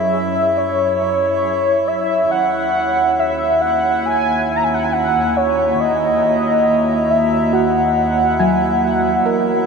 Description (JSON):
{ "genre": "ambient", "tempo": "69 BPM", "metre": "4/4", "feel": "straight", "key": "unclear", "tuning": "A4 = 440 Hz", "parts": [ { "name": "warm velvety synth lead", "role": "melody", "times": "0.0-9.2 s", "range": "C#5 to A#5", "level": "-16 LUFS", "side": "equal", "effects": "chorus, diffuse ambient delay" }, { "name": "warbly tape-like pad", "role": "sustained chords", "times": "0.0-9.7 s", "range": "E3 to A#5", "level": "-22 LUFS", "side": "right 1 dB", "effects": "chorus, built-in reverb" }, { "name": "soft round pluck", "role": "arpeggios", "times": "0.0-1.4, 7.5-9.7 s", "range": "F#3 to G#5", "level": "-23 LUFS", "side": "right 1 dB", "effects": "analog chorus, diffuse ambient delay" }, { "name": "warm studio double bass section", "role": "bass", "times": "0.0-9.7 s", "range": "D#2 to F#2", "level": "-30 LUFS", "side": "equal", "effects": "tube saturation" }, { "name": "hand-pumped harmonium", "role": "drone", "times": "0.0-9.7 s", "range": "E4", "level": "-24 LUFS", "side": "right 4 dB", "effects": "none" } ], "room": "wet huge ambient reverb, RT60 7.8 s", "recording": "dark, warm production", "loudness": "-14 LUFS", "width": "side -5 dB against mid", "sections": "0.0-9.7 A section", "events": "fade-in on ambient pad 0.0-9.7; fade-in on double bass section 0.0-9.7", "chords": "0.0 F#7(no3); 2.3 D#m", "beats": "0.57 1.44 | 2.31 3.18 4.05 4.92 | 5.79 6.66 7.53 8.39 | 9.26" }